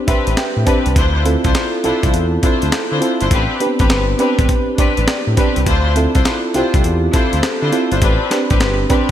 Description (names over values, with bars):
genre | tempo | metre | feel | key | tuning
R&B, new jack swing | 102 BPM | 4/4 | swing 65% on 16ths | A minor | A4 = 440 Hz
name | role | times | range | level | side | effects
mellow FM electric piano | accompaniment | 0.0-9.1 s | B3 to A5 | -18 LUFS | right 2 dB | chorus
warm studio string section | stabs | 0.1-9.1 s | C4 to C5 | -20 LUFS | left 3 dB | none
smooth synth bass | bass | 0.1-8.9 s | G1 to D3 | -18 LUFS | equal | none
breakbeat sampler-style drum kit | drums | 0.1-9.1 s | hi-hat, kick drum, snare drum | -17 LUFS | equal | none
room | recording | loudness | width
light reverb, digital ambience | bright 1980s-style digital production | -13 LUFS | side -11 dB against mid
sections
0.0-9.1 A section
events
FM electric piano fill 0.0-1.0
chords
0.0 Am11; 1.0 Dm9; 3.3 Am11; 5.7 Dm9; 8.0 Am11